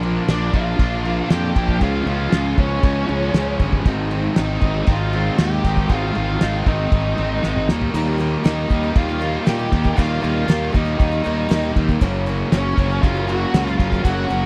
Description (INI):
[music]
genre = classic rock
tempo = 118 BPM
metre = 4/4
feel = straight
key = unclear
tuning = A4 = 440 Hz
[part]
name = distorted electric guitar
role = riff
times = 0.0-14.5 s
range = Gb2 to Eb4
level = -26 LUFS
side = equal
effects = distortion
[part]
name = fuzz fingered electric bass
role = bass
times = 0.0-14.5 s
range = Gb1 to Bb2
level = -24 LUFS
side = equal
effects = overdrive
[part]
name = damped 70s drum kit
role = drums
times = 0.0-14.4 s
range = crash cymbal, kick drum, snare drum, toms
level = -20 LUFS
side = equal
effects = none
[part]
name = octave-fuzz lead guitar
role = melody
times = 0.3-14.5 s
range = Db4 to G4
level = -27 LUFS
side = equal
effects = distortion, slapback echo
[part]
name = picked twelve-string acoustic guitar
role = accompaniment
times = 7.9-14.5 s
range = Gb2 to G4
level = -34 LUFS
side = equal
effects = none
[sound]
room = little or no reverb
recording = dry, close 1970s-style studio recording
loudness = -19 LUFS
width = mono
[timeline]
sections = 0.0-14.5 A section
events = drum fill 7.4-7.9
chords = 0.0 Bb; 1.8 Db; 3.9 Ab; 7.7 Eb; 12.0 Gb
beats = 0.29 0.80 1.31 | 1.82 2.33 2.84 3.35 | 3.86 4.37 4.88 5.39 | 5.91 6.42 6.92 7.43 | 7.94 8.45 8.96 9.47 | 9.98 10.49 11.00 11.51 | 12.02 12.53 13.03 13.54 | 14.05